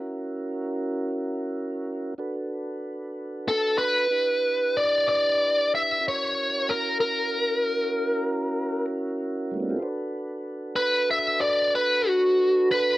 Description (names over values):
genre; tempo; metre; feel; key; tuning
blues; 63 BPM (dotted quarters); 12/8; straight; B minor; A4 = 439 Hz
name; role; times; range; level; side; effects
mellow tonewheel organ; sustained chords; 0.0-13.0 s; G3 to C5; -30 LUFS; right 1 dB; slow rotary speaker
biting lead guitar; melody; 3.5-13.0 s; F#4 to E5; -21 LUFS; equal; overdrive
room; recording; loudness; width
little or no reverb; recorded outdoors, with no room sound; -23 LUFS; side -17 dB against mid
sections
0.0-9.8 A section; 9.8-13.0 B section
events
lead electric guitar solo 9.8-13.0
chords
0.0 F#7; 2.2 Bm7; 4.1 Em7; 6.0 F#7; 9.8 Bm7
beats
0.27 1.22 | 2.18 3.13 4.09 5.05 | 6.00 6.96 7.91 8.87 | 9.82 10.78 11.73 12.69